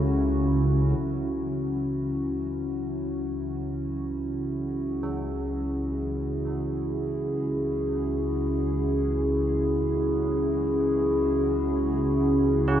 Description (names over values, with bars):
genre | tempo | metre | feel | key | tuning
dark ambient drone | free time | none | none | C# minor | A4 = 440 Hz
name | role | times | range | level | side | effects
dark analog pad | sustained chords | 0.0-12.8 s | C#4 to A4 | -26 LUFS | equal | wide subtle chorus
analog drone | drone | 0.0-12.8 s | C#2 to C#3 | -28 LUFS | right 1 dB | chorus
carillon bells | arpeggios | 5.0-12.8 s | C#3 to C#4 | -38 LUFS | right 4 dB | diffuse ambient delay
room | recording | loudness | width
wet cathedral reverb, RT60 5.1 s | in a vast, echoing space | -24 LUFS | side -10 dB against mid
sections
1.0-12.8 A section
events
fade-in on synth drone 1.0-12.8; fade-in on church bells 1.0-12.8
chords
0.0 F#m/C#; 1.0 C#m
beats
free time